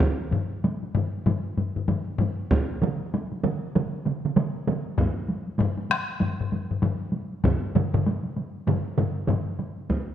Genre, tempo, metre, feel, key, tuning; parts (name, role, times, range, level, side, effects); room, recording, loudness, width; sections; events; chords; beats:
japanese traditional, taiko drum ensemble; 97 BPM; 4/4; swing 60% on 16ths
solo taiko drums; percussion; 0.0-10.1 s; -26 LUFS; right 1 dB
taiko ensemble; percussion; 0.0-10.1 s; -28 LUFS; right 1 dB
solo taiko drums; percussion; 0.3-9.5 s; -26 LUFS; left 4 dB
taiko ensemble; percussion; 2.8-9.4 s; -27 LUFS; right 5 dB
wet scoring stage reverb, RT60 1.7 s; -24 LUFS; side -10 dB against mid
0.0-9.9 A section
| 0.01 0.64 1.26 1.88 | 2.50 3.12 3.74 4.36 | 4.98 5.60 6.21 6.83 | 7.44 8.06 8.67 9.28 | 9.89